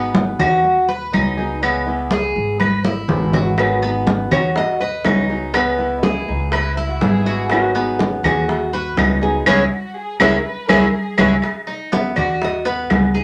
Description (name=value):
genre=latin, Cuban son and guajira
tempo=122 BPM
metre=4/4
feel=straight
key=G# minor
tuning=A4 = 440 Hz
part: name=dark studio violin section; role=second line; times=0.0-0.4, 6.0-11.4 s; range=D#4 to B4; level=-32 LUFS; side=equal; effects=none
part: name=fingerpicked swing-style acoustic guitar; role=accompaniment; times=0.0-11.3 s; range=C#3 to G#4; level=-28 LUFS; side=equal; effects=none
part: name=Cuban tres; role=arpeggios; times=0.0-13.2 s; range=B3 to B4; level=-23 LUFS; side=equal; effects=none
part: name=upright bass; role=bass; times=0.0-13.2 s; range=G#1 to D#2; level=-28 LUFS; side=equal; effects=none
part: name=congas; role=percussion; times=0.1-13.2 s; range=none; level=-22 LUFS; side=equal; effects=none
part: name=claves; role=percussion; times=0.4-13.1 s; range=none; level=-23 LUFS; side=equal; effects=none
part: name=nylon-string guitar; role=melody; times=3.6-13.2 s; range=D#4 to E5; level=-25 LUFS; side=equal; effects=none
part: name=bongos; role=percussion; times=3.6-13.2 s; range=none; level=-28 LUFS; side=equal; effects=none
room=wet studio ambience, RT60 0.5 s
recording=none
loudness=-18 LUFS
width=mono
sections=0.0-11.4 A section; 11.4-13.2 B section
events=drum fill 2.6-3.6, 10.4-11.4; band accent 9.5-11.4; nylon-string guitar solo 11.4-13.2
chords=0.0 G#m7; 1.6 C#m7; 3.6 G#m7; 5.5 C#m7; 7.5 G#m7; 9.5 C#m7; 11.4 G#m7 (rootless)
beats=0.15 0.64 1.13 | 1.62 2.11 2.60 3.09 | 3.58 4.07 4.56 5.05 | 5.54 6.03 6.52 7.01 | 7.50 7.99 8.48 8.97 | 9.46 9.96 10.45 10.94 | 11.43 11.92 12.41 12.90